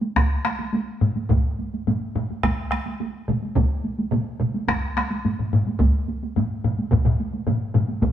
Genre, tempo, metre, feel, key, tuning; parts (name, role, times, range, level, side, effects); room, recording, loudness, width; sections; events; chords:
japanese traditional, taiko drum ensemble; 107 BPM; 4/4; straight
taiko ensemble; percussion; 0.0-8.1 s; -27 LUFS; right 2 dB
taiko ensemble; percussion; 0.2-8.1 s; -24 LUFS; left 2 dB
taiko ensemble; percussion; 0.2-8.1 s; -23 LUFS; equal
taiko ensemble; percussion; 2.4-8.1 s; -26 LUFS; equal
wet stone room reverb, RT60 1.3 s; band playing live in one room; -21 LUFS; side -10 dB against mid
0.0-8.1 A section
speeding up 0.0-8.1